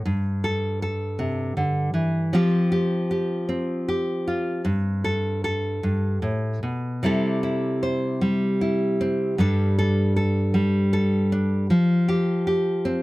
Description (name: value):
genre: folk, solo fingerstyle acoustic guitar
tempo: 52 BPM (dotted quarters)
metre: 6/8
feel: rubato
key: unclear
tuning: A4 = 438 Hz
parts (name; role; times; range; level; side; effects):
- nylon-string guitar; solo; 0.0-13.0 s; G2 to C5; -21 LUFS; equal; none
room: light reverb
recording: close, detailed microphones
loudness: -21 LUFS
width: side -19 dB against mid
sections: 0.0-13.0 A section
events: none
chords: 0.0 Gsus2; 2.3 Fsus2; 4.7 Gsus2; 7.0 C6; 9.4 Gsus2; 11.7 Fsus2